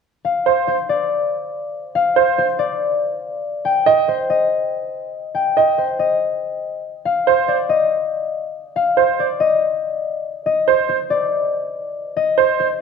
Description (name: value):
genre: classical, minimalist pattern music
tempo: 141 BPM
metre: 4/4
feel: straight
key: C minor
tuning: A4 = 441 Hz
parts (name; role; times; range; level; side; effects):
- concert harp; melody; 0.2-12.8 s; C5 to G5; -18 LUFS; left 5 dB; none
- bright grand piano; arpeggios; 0.5-12.7 s; C5 to Eb5; -16 LUFS; right 10 dB; none
room: moderate large studio reverb, RT60 1.2 s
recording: none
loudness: -16 LUFS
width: side -6 dB against mid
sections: 0.2-12.8 A section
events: none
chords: 0.2 Csus24; 3.7 Eb; 7.1 F5